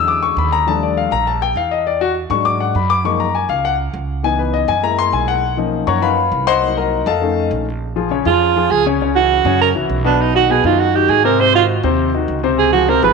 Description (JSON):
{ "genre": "Afro-Cuban jazz", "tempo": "202 BPM", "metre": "4/4", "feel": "straight", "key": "Bb minor", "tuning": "A4 = 440 Hz", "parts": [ { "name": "warm concert grand piano", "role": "accompaniment", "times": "0.0-13.1 s", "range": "Cb3 to D6", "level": "-16 LUFS", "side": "left 8 dB", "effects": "none" }, { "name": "upright bass", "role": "bass", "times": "0.0-13.1 s", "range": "Ab1 to G#2", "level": "-21 LUFS", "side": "right 3 dB", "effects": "none" }, { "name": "breathy alto saxophone", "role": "melody", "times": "8.3-13.1 s", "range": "D4 to C5", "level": "-14 LUFS", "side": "right 12 dB", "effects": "none" } ], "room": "wet echo chamber reverb, RT60 1.8 s, small room ambience", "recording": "1960s-style stereo with parts hard left and right", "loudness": "-14 LUFS", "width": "side -4 dB against mid", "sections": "0.0-7.8 A section; 7.8-13.1 A section", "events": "grand piano solo 0.0-7.8; alto saxophone solo 7.8-13.1", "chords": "0.0 E13; 0.7 Ebmaj9#11; 1.9 E9; 3.0 Gbmaj13; 4.2 Dbm9; 4.8 Gb9; 5.4 Bmaj9#11; 6.6 Cm7b5; 7.2 Faug7; 7.8 Bbm7; 9.0 Dbm; 9.6 Gb5; 10.2 B; 11.4 Ab7; 12.6 Dbmaj7" }